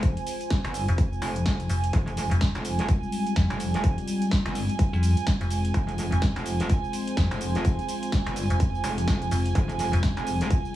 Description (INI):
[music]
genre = bass house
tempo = 126 BPM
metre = 4/4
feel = swing 60% on 16ths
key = F minor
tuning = A4 = 439 Hz
[part]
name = deep dark ambient pad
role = sustained chords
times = 0.0-10.8 s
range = G3 to C5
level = -32 LUFS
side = left 1 dB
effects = chorus, built-in reverb, sidechain pumping
[part]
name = metallic wobble bass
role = bass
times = 0.0-10.5 s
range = F1 to G1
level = -28 LUFS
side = left 1 dB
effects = chorus, sidechain pumping
[part]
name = big-room dance drum kit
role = drums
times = 0.0-10.7 s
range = hi-hat, shaker, snare drum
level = -33 LUFS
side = left 1 dB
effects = none
[part]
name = electronic kick drum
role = drums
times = 0.0-10.6 s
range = none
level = -25 LUFS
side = equal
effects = none
[part]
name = airy breathy pad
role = texture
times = 0.0-10.8 s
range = Ab5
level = -34 LUFS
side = right 8 dB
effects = chorus, sidechain pumping
[part]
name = metallic FM bass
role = bass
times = 0.9-10.1 s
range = F1 to F2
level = -24 LUFS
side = equal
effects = tube saturation, sidechain pumping
[sound]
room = little or no reverb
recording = small room ambience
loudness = -23 LUFS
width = side -14 dB against mid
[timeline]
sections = 0.0-10.8 A section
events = none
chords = 0.0 Fm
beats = | 0.03 0.51 0.98 1.46 | 1.93 2.41 2.89 3.36 | 3.84 4.31 4.79 5.27 | 5.74 6.22 6.70 7.17 | 7.65 8.12 8.60 9.08 | 9.55 10.03 10.51